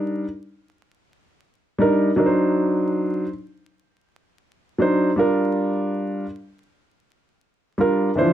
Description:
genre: hip hop.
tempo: 80 BPM.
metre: 4/4.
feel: swing 65% on 16ths.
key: unclear.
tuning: A4 = 440 Hz.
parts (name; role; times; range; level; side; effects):
dark grand piano; solo; 0.0-8.3 s; E3 to C5; -18 LUFS; right 1 dB; none.
room: moderate small room reverb, RT60 0.5 s.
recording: dark, warm production, vinyl crackle.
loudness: -19 LUFS.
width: side -11 dB against mid.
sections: 0.0-8.3 A section.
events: none.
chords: 0.0 Ebmaj7; 2.2 D7b9; 5.2 Gm7.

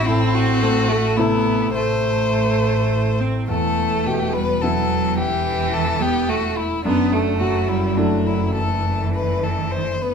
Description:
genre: neoclassical piano and strings.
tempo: 106 BPM.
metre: 3/4.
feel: rubato.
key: A dorian.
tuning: A4 = 441 Hz.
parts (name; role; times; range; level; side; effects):
clear violin; melody; 0.0-10.1 s; D4 to C5; -23 LUFS; left 5 dB; none.
clear cello; second line; 0.0-10.1 s; E3 to C4; -22 LUFS; right 4 dB; none.
clear concert grand piano; accompaniment; 0.0-10.1 s; E2 to E4; -24 LUFS; left 1 dB; none.
rich double bass; bass; 0.0-10.1 s; E1 to A1; -24 LUFS; equal; none.
room: moderate large studio reverb, RT60 0.8 s.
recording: band playing live in one room.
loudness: -17 LUFS.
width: side -6 dB against mid.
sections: 0.0-10.1 A section.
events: none.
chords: 0.0 Am; 3.5 Em; 6.8 Dadd9/F#.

